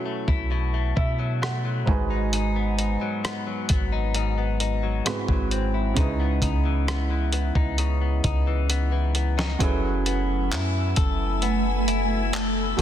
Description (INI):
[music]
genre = contemporary R&B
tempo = 66 BPM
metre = 4/4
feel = straight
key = F# dorian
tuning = A4 = 440 Hz
[part]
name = felt-muted upright piano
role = accompaniment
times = 0.0-12.8 s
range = G#2 to G#5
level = -30 LUFS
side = right 5 dB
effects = none
[part]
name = direct-recorded clean electric guitar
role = arpeggios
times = 0.0-12.8 s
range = G#2 to A4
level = -30 LUFS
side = left 9 dB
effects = lush chorus, digital delay
[part]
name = soft 808-style bass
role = bass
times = 0.3-12.8 s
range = F#1 to B2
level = -25 LUFS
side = equal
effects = none
[part]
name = dusty soul sampler-style drum kit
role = drums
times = 0.3-12.8 s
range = handclaps, hi-hat, kick drum, rim click, snare drum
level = -26 LUFS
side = equal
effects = soft clipping on snare
[part]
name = ethereal airy pad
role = sustained chords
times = 10.4-12.8 s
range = A3 to E6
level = -27 LUFS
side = right 1 dB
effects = ensemble chorus, built-in reverb, phaser, sidechain pumping
[sound]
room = light reverb, digital ambience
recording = dense, heavily limited modern master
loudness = -22 LUFS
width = side -10 dB against mid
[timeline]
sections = 0.0-9.6 A section; 9.6-12.8 B section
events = felt piano fill 0.5-2.3; drum fill 8.7-9.6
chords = 0.0 B7sus4; 1.9 G#m7; 5.1 G#7alt; 6.0 C#m9; 9.6 F#m11